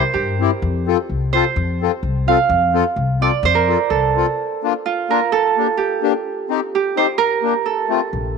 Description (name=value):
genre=alpine folk, alpine dance band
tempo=128 BPM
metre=2/4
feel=straight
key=F major, Bb major from 4.4 s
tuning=A4 = 440 Hz
part: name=Celtic harp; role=melody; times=0.0-8.4 s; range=F4 to F5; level=-18 LUFS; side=right 8 dB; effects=none
part: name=accordion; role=accompaniment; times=0.0-8.0 s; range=A3 to A4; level=-21 LUFS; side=left 16 dB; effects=none
part: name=upright bass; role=bass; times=0.1-4.2, 8.1-8.4 s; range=Bb1 to G2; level=-20 LUFS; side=left 2 dB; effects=none
room=light reverb, small room ambience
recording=1960s-style stereo with parts hard left and right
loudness=-16 LUFS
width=side -5 dB against mid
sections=0.0-4.4 A section; 4.4-8.4 B section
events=none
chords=0.0 C; 0.6 F; 4.4 Bb; 5.3 Gm; 6.3 Cm; 7.2 Gm; 7.7 F